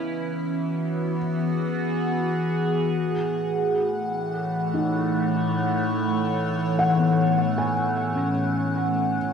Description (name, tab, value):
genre	ambient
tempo	77 BPM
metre	4/4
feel	straight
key	A lydian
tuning	A4 = 439 Hz
part	evolving wavetable pad	sustained chords	0.0-9.3 s	A2 to F#5	-22 LUFS	equal	chorus, built-in reverb, phaser
part	felt-muted upright piano	arpeggios	0.0-9.3 s	B3 to G#5	-28 LUFS	right 1 dB	dub echo
room	wet spring reverb, RT60 2.6 s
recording	echo-heavy mix, cassette tape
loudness	-22 LUFS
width	side -6 dB against mid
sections	0.0-2.9 A section; 2.9-9.3 B section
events	none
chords	0.0 Eadd9; 2.9 A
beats	0.59 1.37 2.15 | 2.93 3.71 4.49 5.27 | 6.04 6.83 7.60 8.38 | 9.16